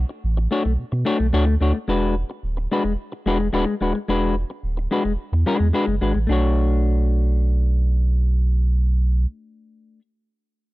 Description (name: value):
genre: funk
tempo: 109 BPM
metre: 4/4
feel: straight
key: B dorian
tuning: A4 = 440 Hz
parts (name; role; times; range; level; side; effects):
- warm sub bass; bass; 0.0-9.3 s; D1 to B2; -19 LUFS; right 1 dB; none
- semi-hollow electric guitar; accompaniment; 0.1-10.0 s; G#3 to C#5; -23 LUFS; left 3 dB; none
room: digital ambience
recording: dry, close 1970s-style studio recording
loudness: -18 LUFS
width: side -19 dB against mid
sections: 0.0-6.3 A section; 6.3-8.5 B section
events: none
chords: 0.0 Bm9; 1.9 E9; 6.3 Bm9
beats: 0.24 0.79 1.34 | 1.89 2.44 2.99 3.54 | 4.09 4.64 5.19 5.74 | 6.29 6.84 7.40 7.95